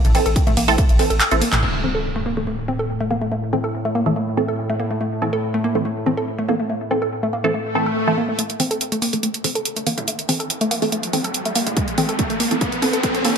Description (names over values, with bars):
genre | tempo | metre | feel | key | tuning
driving peak-time techno | 142 BPM | 4/4 | straight | A phrygian | A4 = 440 Hz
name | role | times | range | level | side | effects
saturated sub bass | bass | 0.0-1.6 s | A1 | -22 LUFS | equal | sidechain pumping, low-pass filter
techno drum kit | drums | 0.0-1.7, 8.4-13.4 s | crash cymbal, handclaps, hi-hat, ride cymbal, toms | -22 LUFS | right 2 dB | sidechain pumping on hats, high-pass filter on hats, low-pass filter on hats, sidechain pumping on cymbals, high-pass filter on cymbals, low-pass filter on cymbals, sidechain pumping on toms, high-pass filter on toms, low-pass filter on toms, high-pass filter on snare, low-pass filter on snare, high-pass filter on room, low-pass filter on room
woody wave-folded pluck | riff | 0.1-13.4 s | A3 to A4 | -23 LUFS | equal | chorus, tube saturation, sidechain pumping, dub echo
filtered dub chord stab | stabs | 0.1-13.3 s | E3 to A4 | -24 LUFS | right 2 dB | phaser, sidechain pumping, ping-pong delay
electronic kick drum | drums | 0.4-0.9, 11.8-13.1 s | none | -19 LUFS | equal | none
analog drone | drone | 2.1-8.4 s | A2 | -27 LUFS | equal | chorus, sidechain pumping
impact, swell and riser | sound effects | 1.6-3.3, 7.7-13.4 s | none | -26 LUFS | equal | none
room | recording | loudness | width
moderate plate reverb, RT60 1.9 s, digital ambience | high-pass filter | -18 LUFS | side -7 dB against mid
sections
0.0-1.6 A section; 1.6-8.4 B section; 8.4-13.4 C section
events
drop 0.0-1.6; kick drops out 1.2-1.6; drum fill 1.2-1.6, 11.8-13.4; band accent 1.5; impact 1.6-3.3; filter sweep on drum 1.6-8.4; filter sweep on synth stab 1.6-8.4, 8.4-13.4; swell 7.7-8.4; build-up 8.4-13.4; riser 8.4-13.4; filter sweep on synth arpeggio sound 8.4-13.4; filter sweep 8.4-13.4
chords
0.0 Am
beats
0.36 0.78 1.21 | 1.63 2.05 2.47 2.90 | 3.32 3.74 4.16 4.58 | 5.01 5.43 5.85 6.28 | 6.70 7.12 7.54 7.96 | 8.39 8.81 9.23 9.66 | 10.08 10.50 10.92 11.35 | 11.77 12.19 12.61 13.04